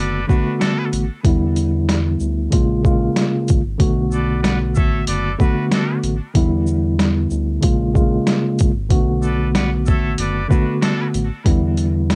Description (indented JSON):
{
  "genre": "hip hop, boom-bap hip-hop",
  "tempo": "94 BPM",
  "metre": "4/4",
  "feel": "swing 60% on 16ths",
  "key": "B minor",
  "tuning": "A4 = 439 Hz",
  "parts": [
    { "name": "mellow tine electric piano", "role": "accompaniment", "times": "0.0-12.2 s", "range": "C#3 to F#4", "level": "-22 LUFS", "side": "equal", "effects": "high-pass filter, low-pass filter, cassette tape" },
    { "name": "muted trumpet section", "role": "stabs", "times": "0.0-11.1 s", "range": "D4 to F#5", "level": "-29 LUFS", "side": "equal", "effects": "high-pass filter, low-pass filter, cassette tape, tape echo" },
    { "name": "round analog bass", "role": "bass", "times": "0.0-12.2 s", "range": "F#1 to E2", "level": "-24 LUFS", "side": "equal", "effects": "none" },
    { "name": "boom bap sampler-style drum kit", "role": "drums", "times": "0.3-12.2 s", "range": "hi-hat, kick drum, shaker, snare drum", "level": "-20 LUFS", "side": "equal", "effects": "overdrive, cassette tape" }
  ],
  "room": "light reverb",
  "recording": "home recording on cassette",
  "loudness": "-18 LUFS",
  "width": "mono",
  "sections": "0.0-3.8 A section; 3.8-12.2 A section",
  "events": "none",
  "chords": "0.0 Bm7; 1.2 Em7; 2.5 A#m7; 3.8 Bm7; 6.4 Em7; 7.6 A#m7; 8.9 Bm7; 11.5 Em7"
}